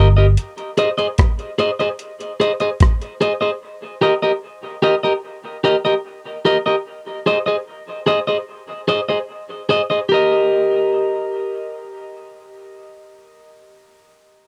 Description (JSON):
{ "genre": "dub reggae", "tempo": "74 BPM", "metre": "4/4", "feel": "straight", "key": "Eb major", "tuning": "A4 = 439 Hz", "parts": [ { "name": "electric guitar at the edge of break-up", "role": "accompaniment", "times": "0.0-13.6 s", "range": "G4 to Eb5", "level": "-20 LUFS", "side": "equal", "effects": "dub echo" }, { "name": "breakbeat sampler-style drum kit", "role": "drums", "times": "0.4-3.4 s", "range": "hi-hat, kick drum, rim click", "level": "-18 LUFS", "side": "equal", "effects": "none" } ], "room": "light reverb", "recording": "dry, close 1970s-style studio recording", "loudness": "-19 LUFS", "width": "mono", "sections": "0.0-10.1 A section; 10.1-13.4 B section", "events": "none", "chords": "0.4 Ab; 3.6 Eb; 6.9 Ab; 10.1 Eb", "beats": "| 0.37 1.18 1.99 2.80 | 3.61 4.42 5.24 6.05 | 6.86 7.67 8.48 9.29 | 10.11 10.92 11.73 12.54" }